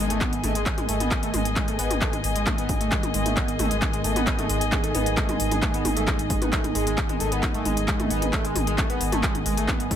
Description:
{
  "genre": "driving peak-time techno",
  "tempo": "133 BPM",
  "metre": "4/4",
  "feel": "straight",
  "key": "G# phrygian",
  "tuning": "A4 = 440 Hz",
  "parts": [
    { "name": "overdriven synth lead", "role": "riff", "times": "0.0-10.0 s", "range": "G#3 to B3", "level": "-30 LUFS", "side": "equal", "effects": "distortion, tube saturation, lush chorus, sidechain pumping, ping-pong delay" },
    { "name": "warm sub bass", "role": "bass", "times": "0.0-10.0 s", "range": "G#1", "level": "-30 LUFS", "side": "equal", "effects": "tube saturation, sidechain pumping, low-pass filter" },
    { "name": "metallic inharmonic drone", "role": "drone", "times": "0.0-10.0 s", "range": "G#2 to D#3", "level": "-31 LUFS", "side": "right 2 dB", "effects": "chorus, built-in reverb, sidechain pumping" },
    { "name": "muted chamber string section", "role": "texture", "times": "0.0-10.0 s", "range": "B3 to G#5", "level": "-30 LUFS", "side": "left 2 dB", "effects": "sidechain pumping" },
    { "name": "techno drum kit", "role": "drums", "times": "0.1-10.0 s", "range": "handclaps, hi-hat, toms", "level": "-28 LUFS", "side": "left 1 dB", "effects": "sidechain pumping on hats, sidechain pumping on toms" },
    { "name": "electronic kick drum", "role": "drums", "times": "0.2-10.0 s", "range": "none", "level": "-28 LUFS", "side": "equal", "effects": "none" }
  ],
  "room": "light reverb, digital ambience",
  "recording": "none",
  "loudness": "-22 LUFS",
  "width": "side -9 dB against mid",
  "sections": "0.0-10.0 A section",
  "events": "none",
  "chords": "0.0 G#m"
}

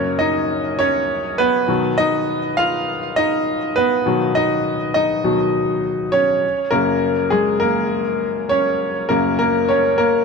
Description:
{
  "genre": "pop",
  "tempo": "101 BPM",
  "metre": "4/4",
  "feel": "straight",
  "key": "F# major",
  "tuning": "A4 = 440 Hz",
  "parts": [
    { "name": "bright grand piano", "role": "solo", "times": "0.0-10.2 s", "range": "F#2 to E#5", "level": "-16 LUFS", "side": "equal", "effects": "digital delay" }
  ],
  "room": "light reverb",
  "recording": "dark, warm production",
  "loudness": "-16 LUFS",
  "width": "side -4 dB against mid",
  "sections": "0.0-10.2 A section",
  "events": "grand piano solo 0.0-10.2",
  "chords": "0.0 F#; 1.7 B; 6.4 F#"
}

